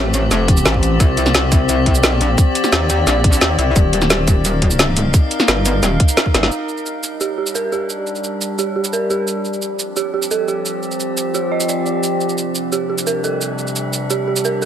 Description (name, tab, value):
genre	dark technical drum and bass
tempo	174 BPM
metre	4/4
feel	straight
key	G minor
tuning	A4 = 440 Hz
part	metallic inharmonic drone	sustained chords	0.0-14.7 s	C3 to F5	-20 LUFS	left 1 dB	chorus, built-in reverb, sidechain pumping
part	metallic wobble bass	bass	0.0-6.5 s	Eb1 to Eb2	-17 LUFS	equal	chorus
part	drum and bass drum kit	drums	0.1-14.7 s	hi-hat, shaker, snare drum	-18 LUFS	equal	none
part	electronic kick drum	drums	0.5-6.3 s	none	-14 LUFS	equal	none
part	pulsing pluck wobble bass	bass	0.7-1.0 s	A1	-16 LUFS	equal	chorus
part	dark detuned synth bell	arpeggios	7.2-14.7 s	G4 to Eb5	-21 LUFS	right 4 dB	chorus, vintage 12-bit sampler grit, sidechain pumping, low-pass filter, dub echo
room	light reverb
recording	none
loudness	-14 LUFS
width	side -9 dB against mid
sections	0.0-6.5 A section; 6.5-14.7 B section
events	drop 0.0-6.5; drum fill 6.3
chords	0.0 F; 1.0 Cm; 3.8 Eb; 6.5 G5; 9.3 F5; 12.0 C5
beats	0.31 0.66 | 1.00 1.34 1.69 2.03 | 2.38 2.72 3.07 3.41 | 3.76 4.10 4.45 4.79 | 5.14 5.48 5.83 6.17 | 6.52 6.86 7.21 7.55 | 7.90 8.24 8.59 8.93 | 9.28 9.62 9.96 10.31 | 10.65 11.00 11.34 11.69 | 12.03 12.38 12.72 13.07 | 13.41 13.76 14.10 14.45